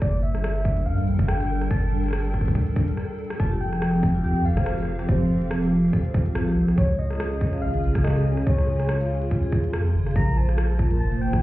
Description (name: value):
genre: IDM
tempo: 142 BPM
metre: 4/4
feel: swing 56% on 16ths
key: F major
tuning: A4 = 435 Hz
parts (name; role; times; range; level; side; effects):
- soft struck synth lead; melody; 0.0-11.4 s; C5 to Bb5; -32 LUFS; left 2 dB; chorus, tape echo
- hollow soft pad; sustained chords; 0.0-11.4 s; Bb2 to Ab5; -26 LUFS; equal; ensemble chorus, vintage 12-bit sampler grit
- warm sub bass; bass; 0.0-11.4 s; F1 to G2; -24 LUFS; equal; none
- electronic kick drum; drums; 0.0-11.4 s; none; -24 LUFS; equal; none
- organic electronic drum kit; drums; 0.3-11.4 s; hi-hat, rim click, shaker; -34 LUFS; right 1 dB; overdrive, digital delay
- vibraphone with medium mallets; arpeggios; 3.4-11.3 s; F4 to F5; -34 LUFS; left 1 dB; digital delay
room: light reverb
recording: heard muffled through a wall, club reverb, EQ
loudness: -20 LUFS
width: side -16 dB against mid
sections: 0.0-11.4 A section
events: break 3.0-3.4; drum fill 3.0-3.4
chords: 0.0 Gmadd9; 3.4 Fadd9; 6.8 Db; 10.2 Bbsus2